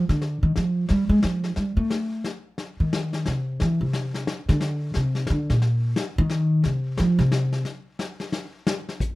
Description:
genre	jazz piano trio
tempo	177 BPM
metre	3/4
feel	swing 63% on 8ths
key	unclear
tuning	A4 = 441 Hz
part	upright bass	bass	0.0-7.6 s	Bb2 to A3	-21 LUFS	equal	none
part	vintage brush drum kit	drums	0.1-9.1 s	brushed snare drum, hi-hat, kick drum, snare drum	-29 LUFS	left 3 dB	none
room	little or no reverb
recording	none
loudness	-22 LUFS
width	side -19 dB against mid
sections	0.0-8.7 A section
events	upright bass solo 0.0-8.7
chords	none

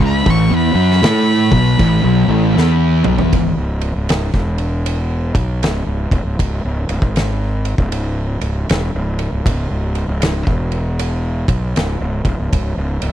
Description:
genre	stoner and doom metal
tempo	78 BPM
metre	4/4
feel	swing 64% on 8ths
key	unclear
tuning	A4 = 438 Hz
part	clear fiddle	melody	0.0-2.8 s	B5 to C#6	-21 LUFS	equal	tape echo
part	thick fuzz guitar	riff	0.0-3.3 s	A2 to A4	-17 LUFS	left 11 dB	distortion
part	thick fuzz guitar	riff	0.0-3.3 s	A2 to A4	-17 LUFS	right 10 dB	distortion
part	fuzz fingered electric bass	bass	0.0-13.1 s	C#1 to A2	-18 LUFS	equal	overdrive
part	oversized low-tuned drum kit	drums	0.3-13.1 s	crash cymbal, kick drum, ride cymbal, snare drum, toms	-20 LUFS	equal	none
room	little or no reverb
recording	dry, close 1970s-style studio recording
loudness	-14 LUFS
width	side -11 dB against mid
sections	0.0-3.3 A section; 3.3-13.1 B section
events	fiddle solo 0.0-3.3; drum fill 2.6-3.3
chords	0.0 B5; 3.3 N.C.; 5.2 Bsus2/C#; 7.0 N.C.; 11.4 Bsus2/C#

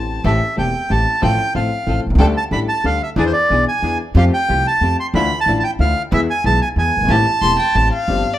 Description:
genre	tango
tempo	184 BPM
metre	3/4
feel	rubato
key	A minor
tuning	A4 = 440 Hz
part	dark violin	second line	0.0-0.2, 7.4-8.4 s	D5 to C6	-21 LUFS	left 6 dB	none
part	warm grand piano	accompaniment	0.0-8.2 s	E1 to A4	-21 LUFS	left 4 dB	none
part	upright bass	bass	0.0-8.2 s	E1 to F2	-18 LUFS	right 1 dB	none
part	rich symphonic string section	stabs	0.2-7.9 s	F3 to A4	-28 LUFS	right 2 dB	none
part	bandoneon	melody	0.3-7.9 s	C5 to C6	-18 LUFS	right 2 dB	none
room	light reverb, studio reverb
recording	rough home demo mix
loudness	-14 LUFS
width	side -13 dB against mid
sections	0.2-8.1 A section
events	none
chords	0.2 Am7; 1.2 F/A; 2.2 Dsus4; 3.2 E7; 4.2 Fadd9; 5.1 Dmadd9; 6.1 E; 7.1 Am7

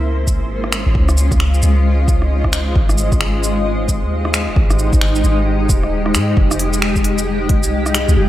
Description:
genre	future garage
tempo	133 BPM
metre	4/4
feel	swing 62% on 16ths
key	F minor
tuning	A4 = 437 Hz
part	granular cloud pad	sustained chords	0.0-8.3 s	Ab3 to Eb5	-19 LUFS	left 1 dB	built-in reverb, analog chorus, sidechain pumping
part	soft 808-style bass	bass	0.0-8.3 s	Eb1 to Ab2	-17 LUFS	equal	tube saturation, sidechain pumping
part	electronic kick drum	drums	0.3-7.6 s	none	-16 LUFS	equal	small room ambience
part	organic electronic drum kit	drums	0.3-8.2 s	finger snaps, hi-hat, rim click, shaker	-22 LUFS	equal	small room ambience, gated reverb
room	light reverb, digital ambience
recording	bright 1980s-style digital production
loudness	-13 LUFS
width	side -14 dB against mid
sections	0.0-6.4 A section; 6.4-8.3 B section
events	kick drops out 5.9-6.4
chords	0.0 Dbmaj9; 2.8 Abmaj7; 6.4 Fm9

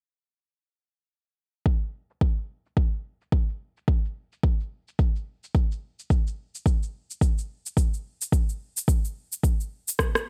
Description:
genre	organic downtempo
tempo	108 BPM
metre	4/4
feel	swing 59% on 16ths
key	none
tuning	none
part	electronic kick drum	drums	1.7-10.1 s	none	-24 LUFS	equal	overdrive, studio reverb
part	electronic shaker and rim click	drums	1.7-10.2 s	none	-32 LUFS	equal	overdrive, low-pass filter on perc, studio reverb, low-pass filter on snare
room	little or no reverb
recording	none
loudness	-27 LUFS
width	mono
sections	1.7-10.3 A section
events	drum fill 10.0-10.3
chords	none

